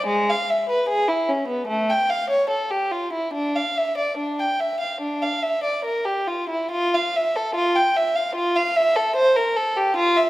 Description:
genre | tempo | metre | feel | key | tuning
classical, baroque-style suite movement for unaccompanied violin | 73 BPM | 4/4 | uneven beats, rubato | D minor, F major from 6.7 s | A4 = 440 Hz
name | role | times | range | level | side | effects
rich violin | solo | 0.0-10.3 s | G#3 to G5 | -19 LUFS | equal | none
room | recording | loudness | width
wet recital hall reverb, RT60 1.8 s | none | -20 LUFS | side -16 dB against mid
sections
0.0-6.7 A section; 6.7-10.3 A section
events
none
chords
none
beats
| 0.08 0.89 1.70 2.52 | 3.35 4.19 5.02 5.86 | 6.73 7.56 8.37 9.17 | 9.96

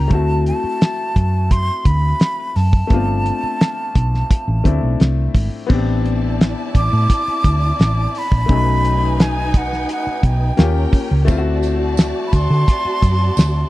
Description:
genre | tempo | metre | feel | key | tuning
lush 1970s-style soul | 86 BPM | 4/4 | straight | A minor | A4 = 441 Hz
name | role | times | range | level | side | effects
breathy jazz flute | melody | 0.0-13.7 s | F#5 to D6 | -22 LUFS | equal | none
bright grand piano | accompaniment | 0.0-13.7 s | F#3 to G4 | -24 LUFS | left 5 dB | none
hollow-body short-scale fingered electric bass | bass | 0.0-13.6 s | G1 to D3 | -17 LUFS | equal | none
cloth-damped thuddy drum kit | drums | 0.1-13.5 s | crash cymbal, hi-hat, kick drum, snare drum | -14 LUFS | equal | vintage 12-bit sampler grit
warm studio string section | second line | 5.7-13.7 s | C#4 to A5 | -26 LUFS | right 1 dB | none
tambourine | percussion | 11.3-13.5 s | none | -37 LUFS | right 18 dB | none
room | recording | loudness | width
studio reverb | dry, close 1970s-style studio recording | -14 LUFS | side -17 dB against mid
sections
0.0-5.7 A section; 5.7-13.7 B section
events
none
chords
0.1 D7; 2.9 G9sus4; 5.7 Am11; 8.5 B7; 10.6 D#9; 11.3 D7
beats
| 0.11 0.81 1.51 2.21 | 2.91 3.60 4.30 5.00 | 5.70 6.40 7.09 7.79 | 8.49 9.19 9.88 10.58 | 11.28 11.98 12.68 13.37

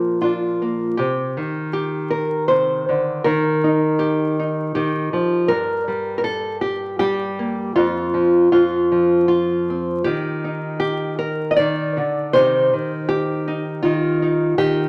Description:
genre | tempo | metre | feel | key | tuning
folk, solo fingerstyle acoustic guitar | 79 BPM | 3/4 | straight | unclear | A4 = 440 Hz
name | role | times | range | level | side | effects
nylon-string guitar | solo | 0.0-14.9 s | F2 to Eb5 | -20 LUFS | equal | none
room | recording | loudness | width
moderate large studio reverb, RT60 1.2 s | vinyl crackle | -20 LUFS | mono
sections
1.0-14.9 A section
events
none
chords
0.0 Bb; 1.0 Cm; 3.3 Eb; 5.5 Gm; 7.8 N.C.; 8.5 F5; 10.1 Eb; 12.3 Cm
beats
0.22 | 0.98 1.74 2.50 | 3.25 4.00 4.75 | 5.50 6.25 7.00 | 7.76 8.52 9.29 | 10.06 10.82 11.58 | 12.34 13.09 13.84 | 14.58

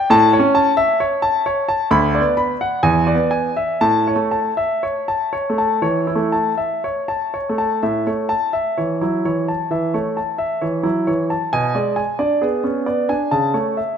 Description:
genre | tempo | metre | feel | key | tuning
classical, baroque-style suite movement for grand piano | 58-68 BPM | 4/4 | rubato | A major | A4 = 440 Hz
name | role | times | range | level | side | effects
clear concert grand piano | solo | 0.0-14.0 s | D2 to B5 | -16 LUFS | equal | none
room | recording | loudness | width
moderate scoring stage reverb, RT60 2.0 s | none | -16 LUFS | side -7 dB against mid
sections
0.0-7.8 A section; 7.8-14.0 B section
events
none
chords
0.1 A; 1.9 Bm/D; 2.8 E7; 3.8 A; 11.5 G#dim/B; 13.3 A/C#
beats
| 0.08 0.98 1.89 2.82 | 3.81 4.82 5.83 6.83 | 7.82 8.77 9.70 10.61 | 11.52 12.42 13.33

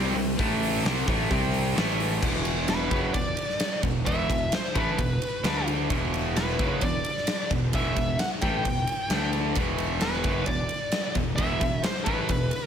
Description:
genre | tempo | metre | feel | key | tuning
hard rock | 131 BPM | 4/4 | straight | E minor | A4 = 440 Hz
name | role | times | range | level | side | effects
cranked stack guitar | riff | 0.0-12.5 s | E2 to D4 | -32 LUFS | left 11 dB | overdrive
distorted electric guitar | riff | 0.0-12.5 s | E2 to D4 | -30 LUFS | right 9 dB | distortion
fuzz picked electric bass | bass | 0.0-12.5 s | E1 to D2 | -30 LUFS | equal | overdrive
huge arena drum kit | drums | 0.2-12.6 s | crash cymbal, hi-hat, kick drum, ride cymbal, snare drum | -28 LUFS | equal | none
high-gain lead guitar | melody | 2.7-12.7 s | B4 to G5 | -30 LUFS | left 1 dB | distortion, slapback echo
room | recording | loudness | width
light reverb, studio reverb | none | -24 LUFS | side -8 dB against mid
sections
0.0-2.2 A section; 2.2-12.7 B section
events
none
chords
0.4 A5; 0.8 C5; 1.8 A5; 2.2 E5; 5.4 D5; 5.9 Em; 9.1 D5; 9.6 E5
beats
| 0.39 0.84 1.30 1.76 | 2.22 2.68 3.15 3.60 | 4.07 4.53 4.99 5.45 | 5.91 6.37 6.82 7.28 | 7.74 8.20 8.65 9.11 | 9.57 10.02 10.48 10.94 | 11.39 11.85 12.30

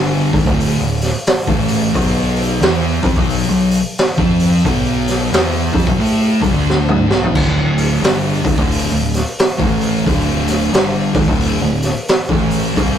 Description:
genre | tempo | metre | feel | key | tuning
stoner and doom metal | 89 BPM | 4/4 | swing 61% on 8ths | unclear | A4 = 440 Hz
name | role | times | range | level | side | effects
thick fuzz guitar | riff | 0.0-13.0 s | D2 to A4 | -19 LUFS | left 5 dB | distortion
thick fuzz guitar | riff | 0.0-13.0 s | D2 to A4 | -19 LUFS | right 5 dB | distortion
growling fingered electric bass | bass | 0.0-13.0 s | D1 to A2 | -21 LUFS | equal | overdrive
raw garage drum kit | drums | 0.3-13.0 s | crash cymbal, hi-hat, kick drum, snare drum, toms | -17 LUFS | equal | none
room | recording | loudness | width
light reverb | rough rehearsal-room recording | -13 LUFS | side -9 dB against mid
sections
0.0-13.0 A section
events
drum fill 6.7-7.3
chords
0.0 D5; 1.9 B5; 7.3 D5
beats
0.59 1.26 | 1.94 2.62 3.29 3.97 | 4.64 5.32 6.00 6.67 | 7.35 8.03 8.70 9.38 | 10.05 10.73 11.41 12.08 | 12.76

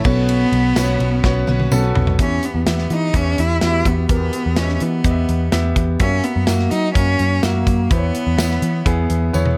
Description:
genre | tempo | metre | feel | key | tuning
piano-driven pop | 126 BPM | 4/4 | straight | unclear | A4 = 443 Hz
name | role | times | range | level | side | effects
clear cello | melody | 0.0-9.3 s | A#3 to E4 | -24 LUFS | equal | none
clear baby grand piano | accompaniment | 0.0-9.6 s | B2 to E5 | -26 LUFS | equal | analog delay
picked steel-string acoustic guitar | riff | 0.0-2.2 s | B3 to B4 | -31 LUFS | equal | analog delay
modern studio drum kit | drums | 0.0-9.6 s | crash cymbal, hi-hat, kick drum, ride cymbal, snare drum, toms | -23 LUFS | equal | none
vintage muted picked electric bass | bass | 0.1-9.5 s | B1 to F#3 | -21 LUFS | equal | none
tambourine | percussion | 0.8-1.8, 6.5-9.4 s | none | -35 LUFS | equal | none
room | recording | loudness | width
small room ambience | echo-heavy mix | -17 LUFS | mono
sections
0.0-2.2 A section; 2.2-9.6 B section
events
drum fill 1.2-2.2, 9.3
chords
0.0 Bsus2; 2.2 Em; 6.0 F#7; 7.9 C#m7/E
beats
| 0.28 0.76 1.24 1.71 | 2.19 2.67 3.14 3.62 | 4.09 4.57 5.05 5.52 | 6.00 6.48 6.95 7.43 | 7.91 8.38 8.86 9.33

